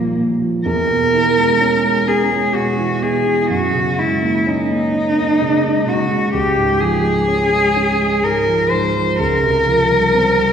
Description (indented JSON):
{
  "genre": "classical, impressionist duo for cello and grand piano",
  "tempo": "63 BPM",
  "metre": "3/4",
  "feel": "rubato",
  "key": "unclear",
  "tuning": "A4 = 438 Hz",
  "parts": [
    { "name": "rich cello", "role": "melody", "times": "0.0-10.5 s", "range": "Bb3 to C5", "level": "-15 LUFS", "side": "equal", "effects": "none" },
    { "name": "dark grand piano", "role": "accompaniment", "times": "0.0-10.5 s", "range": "Db2 to C#4", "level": "-18 LUFS", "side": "right 2 dB", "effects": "none" }
  ],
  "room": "wet scoring stage reverb, RT60 1.8 s",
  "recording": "heard from further back in the room",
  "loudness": "-14 LUFS",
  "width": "side -8 dB against mid",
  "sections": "0.0-10.5 A section",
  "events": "none",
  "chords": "0.0 Ebadd9; 0.7 E6; 3.5 Gb69; 6.3 Db; 9.2 Dbmaj7#11"
}